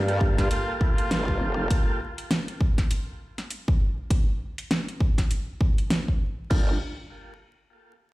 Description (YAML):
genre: glitch hop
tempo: 100 BPM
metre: 4/4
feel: swing 58% on 16ths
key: G minor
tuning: A4 = 440 Hz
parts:
  - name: tonewheel organ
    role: stabs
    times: 0.0-2.0, 6.5-6.7 s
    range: Bb3 to A4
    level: -32 LUFS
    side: equal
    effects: fast rotary speaker, sidechain pumping, digital delay
  - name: growl bass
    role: bass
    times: 0.0-1.7, 6.5-6.8 s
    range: F1 to G2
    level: -26 LUFS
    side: equal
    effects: chorus, tube saturation
  - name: pop drum kit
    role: drums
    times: 0.1-6.6 s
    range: crash cymbal, hi-hat, snare drum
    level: -28 LUFS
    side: equal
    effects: none
  - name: electronic kick drum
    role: drums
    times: 0.2-6.6 s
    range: none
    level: -23 LUFS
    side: equal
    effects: none
  - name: clear trumpet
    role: melody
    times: 0.4-1.7 s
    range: F4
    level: -36 LUFS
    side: equal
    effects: digital delay
room: light reverb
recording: played on a big sound system in a bare room, stone room reverb, vinyl crackle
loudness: -23 LUFS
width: side -19 dB against mid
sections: 0.0-6.5 A section; 6.5-8.1 B section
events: none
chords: 0.0 Gm9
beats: 0.51 1.10 | 1.71 2.31 2.90 3.50 | 4.11 4.71 5.30 5.91 | 6.50